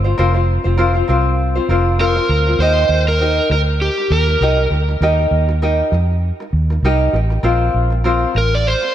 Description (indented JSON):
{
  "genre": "acoustic pop",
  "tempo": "99 BPM",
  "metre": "4/4",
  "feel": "swing 55% on 16ths",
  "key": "unclear",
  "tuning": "A4 = 439 Hz",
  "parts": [
    { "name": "tenor ukulele", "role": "accompaniment", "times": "0.0-8.9 s", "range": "C4 to Eb5", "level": "-18 LUFS", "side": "left 1 dB", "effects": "none" },
    { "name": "vintage muted fingered electric bass", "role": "bass", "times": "0.0-8.7 s", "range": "F1 to F2", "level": "-16 LUFS", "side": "equal", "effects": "none" },
    { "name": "overdriven slide guitar", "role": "melody", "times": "2.0-4.7, 8.4-8.9 s", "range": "G4 to D5", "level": "-18 LUFS", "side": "equal", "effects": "diffuse ambient delay" }
  ],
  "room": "moderate lush hall reverb, RT60 2.5 s",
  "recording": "dreamy mix soaked in reverb",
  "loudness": "-13 LUFS",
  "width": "side -11 dB against mid",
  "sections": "0.0-2.6 A section; 2.6-8.9 B section",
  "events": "none",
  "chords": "0.0 Bbsus2/F; 2.6 Eb; 7.4 Bbsus2"
}